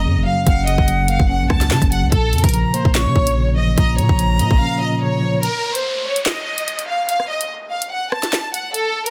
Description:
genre	hip hop, drill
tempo	145 BPM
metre	4/4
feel	half-time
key	Bb harmonic minor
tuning	A4 = 440 Hz
part	warm studio violin section	melody	0.0-9.1 s	A4 to A5	-24 LUFS	equal	none
part	bright silver concert flute	second line	0.0-5.4 s	Gb5 to Db6	-27 LUFS	equal	delay
part	mellow tine electric piano	accompaniment	0.0-5.5 s	Gb2 to Db4	-23 LUFS	equal	none
part	hard-hitting 808-style bass	bass	0.0-4.6 s	Gb1 to Db3	-21 LUFS	equal	none
part	drill drum kit	drums	0.5-9.1 s	handclaps, hi-hat, kick drum, rim click, snare drum	-20 LUFS	equal	none
part	downlifter	sound effects	5.4-8.7 s	none	-32 LUFS	equal	none
room	little or no reverb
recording	dense, heavily limited modern master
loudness	-18 LUFS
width	mono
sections	0.0-5.4 A section; 5.4-9.1 B section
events	break 4.6-5.4, 5.4-9.1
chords	0.0 Gb; 2.1 Bbm; 5.4 N.C.

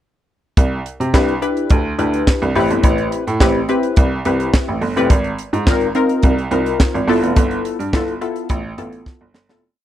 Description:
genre	early-eighties boogie funk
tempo	106 BPM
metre	4/4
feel	straight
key	C major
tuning	A4 = 441 Hz
part	bright baby grand piano	bass	0.6-9.6 s	F1 to C3	-20 LUFS	right 2 dB	none
part	tight funk drum kit	drums	0.6-9.6 s	handclaps, hi-hat, kick drum, snare drum	-14 LUFS	equal	none
part	funky polysynth comp	accompaniment	1.1-9.6 s	B3 to B4	-18 LUFS	left 2 dB	chorus
room	small room ambience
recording	dry, close 1970s-style studio recording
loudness	-14 LUFS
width	side -12 dB against mid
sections	0.6-9.6 verse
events	fade-out 7.4-9.6; drum fill 9.1-9.6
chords	0.6 Cmaj9; 2.6 Am9; 5.1 Ab69; 7.1 G13

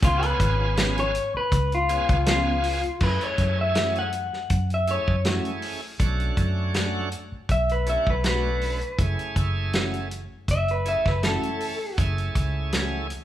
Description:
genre	straight-eighth soul blues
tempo	80 BPM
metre	4/4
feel	swing 54% on 16ths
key	F# minor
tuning	A4 = 438 Hz
part	electric guitar through a small old amp	melody	0.0-12.0 s	E#4 to F#5	-25 LUFS	left 2 dB	none
part	bright tonewheel organ	accompaniment	0.0-13.1 s	A3 to A4	-31 LUFS	right 3 dB	slow rotary speaker, overdrive
part	bright horn section	sustained chords	0.0-2.5 s	B3 to E#4	-38 LUFS	left 1 dB	none
part	vintage muted fingered electric bass	bass	0.0-13.1 s	F#1 to F#2	-26 LUFS	equal	none
part	warm soul drum kit	drums	0.0-13.2 s	crash cymbal, hi-hat, kick drum, snare drum	-26 LUFS	equal	none
part	mellow electric guitar	stabs	0.8-13.0 s	E3 to G#4	-33 LUFS	left 1 dB	phaser
room	moderate large studio reverb, RT60 1.3 s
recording	band playing live in one room, faint mains hum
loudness	-22 LUFS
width	side -12 dB against mid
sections	0.0-3.0 A section; 3.0-13.2 B section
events	clean electric guitar solo 0.0-3.0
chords	0.0 C#7; 3.0 F#m7; 6.0 Bm7; 9.0 F#m7

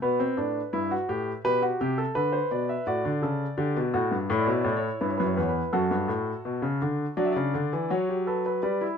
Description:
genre	classical, baroque-style 3-part fugue for grand piano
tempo	84 BPM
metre	4/4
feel	straight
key	unclear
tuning	A4 = 440 Hz
part	warm concert grand piano	solo	0.0-9.0 s	E2 to E5	-24 LUFS	equal	none
room	light reverb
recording	none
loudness	-24 LUFS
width	side -7 dB against mid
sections	0.0-8.6 A section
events	none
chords	0.0 G; 1.4 G/B; 2.9 D/A; 4.3 A7; 5.7 D/F#; 7.2 D

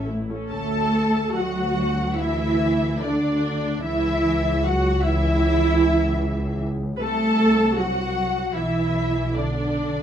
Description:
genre	classical, slow romantic movement for string orchestra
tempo	60-80 BPM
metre	4/4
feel	rubato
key	D major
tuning	A4 = 441 Hz
part	muted studio violin section	second line	0.0-10.0 s	D5 to A5	-30 LUFS	left 2 dB	none
part	muted symphonic viola section	accompaniment	0.0-10.0 s	A3 to B4	-24 LUFS	right 2 dB	none
part	muted symphonic cello section	bass	0.0-10.0 s	A2 to A3	-26 LUFS	equal	none
part	muted symphonic double bass section	bass	0.0-10.0 s	A1 to D2	-25 LUFS	equal	none
part	muted symphonic violin section	melody	0.5-10.0 s	D5 to A5	-32 LUFS	left 4 dB	none
room	light reverb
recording	dark, warm production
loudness	-20 LUFS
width	side -9 dB against mid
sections	0.5-10.0 A section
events	none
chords	0.0 A; 0.5 D; 3.8 C#madd11; 7.0 F#dim/C; 8.5 Bmadd11

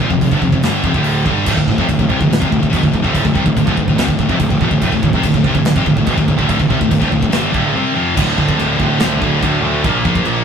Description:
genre	heavy metal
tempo	143 BPM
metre	4/4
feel	straight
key	D minor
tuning	A4 = 442 Hz
part	high-gain distorted guitar	riff	0.0-10.4 s	D2 to C4	-20 LUFS	right 6 dB	distortion
part	scooped high-gain guitar	riff	0.0-10.4 s	D2 to C4	-15 LUFS	left 1 dB	distortion
part	fuzz picked electric bass	bass	0.0-10.4 s	D1 to D2	-22 LUFS	equal	overdrive
part	modern studio drum kit	drums	0.0-10.3 s	china cymbal, crash cymbal, hi-hat, kick drum, snare drum	-19 LUFS	right 1 dB	none
room	moderate studio reverb, RT60 0.6 s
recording	rough rehearsal-room recording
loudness	-12 LUFS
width	side -7 dB against mid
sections	0.0-1.5 A section; 1.5-8.2 B section; 8.2-10.4 C section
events	none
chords	0.0 F5; 1.5 Dm; 8.2 D5; 9.8 Bb5

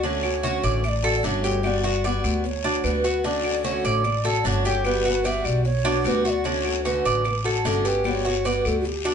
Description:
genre	latin, Cuban son and guajira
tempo	150 BPM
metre	4/4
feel	straight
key	D major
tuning	A4 = 439 Hz
part	breathy round clay ocarina	second line	0.0-9.1 s	F#4 to E5	-27 LUFS	right 4 dB	none
part	picked steel-string acoustic guitar	accompaniment	0.0-9.1 s	D3 to F#4	-26 LUFS	left 5 dB	none
part	Cuban tres	arpeggios	0.0-9.1 s	D4 to D5	-26 LUFS	right 3 dB	none
part	upright bass	bass	0.0-9.1 s	G1 to D2	-27 LUFS	equal	none
part	guiro	percussion	0.0-9.1 s	none	-34 LUFS	left 6 dB	none
part	claves	percussion	0.2-8.9 s	none	-36 LUFS	left 1 dB	none
room	wet studio reverb, RT60 0.5 s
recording	band playing live in one room, nothing above 10.4 kHz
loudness	-20 LUFS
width	side -7 dB against mid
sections	0.0-9.1 A section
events	none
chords	0.0 Dmaj7; 1.6 Gmaj7; 3.2 Dmaj7; 4.8 Gmaj7; 6.5 Dmaj7; 8.1 Gmaj7

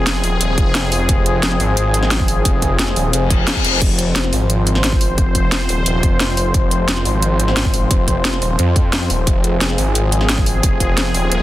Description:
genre	dark technical drum and bass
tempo	176 BPM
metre	4/4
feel	straight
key	F minor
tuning	A4 = 440 Hz
part	sweeping resonant pad	sustained chords	0.0-11.4 s	F3 to C5	-20 LUFS	left 1 dB	chorus, sidechain pumping
part	snarling distorted saw bass	bass	0.0-11.4 s	Eb1 to F2	-18 LUFS	equal	distortion, overdrive, sidechain pumping
part	drum and bass drum kit	drums	0.1-11.4 s	crash cymbal, hi-hat, snare drum	-20 LUFS	equal	overdrive
part	electronic kick drum	drums	0.6-10.9 s	none	-17 LUFS	equal	none
part	reverse cymbal	sound effects	3.3-3.8 s	none	-21 LUFS	left 6 dB	none
room	light reverb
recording	dense, heavily limited modern master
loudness	-14 LUFS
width	side -15 dB against mid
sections	0.0-11.4 A section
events	reverse cymbal 3.3-3.8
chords	0.0 F5

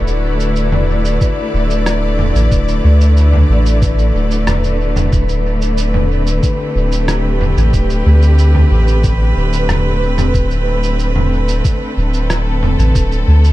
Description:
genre	ambient dub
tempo	92 BPM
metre	4/4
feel	straight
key	D mixolydian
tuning	A4 = 440 Hz
part	rich studio string section	sustained chords	0.0-13.5 s	D3 to D5	-18 LUFS	left 1 dB	none
part	soft dub sub bass	bass	0.0-13.5 s	D1 to D2	-13 LUFS	equal	none
part	wind-like tuned noise texture	texture	0.0-13.5 s	B4	-26 LUFS	left 1 dB	built-in reverb
part	lo-fi sampler-style drum kit	drums	0.1-13.5 s	cabasa, rim click, toms	-21 LUFS	equal	dub echo
part	electronic kick drum	drums	1.2-13.1 s	none	-16 LUFS	equal	none
room	little or no reverb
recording	dark, warm production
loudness	-11 LUFS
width	side -16 dB against mid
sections	0.0-13.5 A section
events	none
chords	0.0 D; 5.1 Am7/D

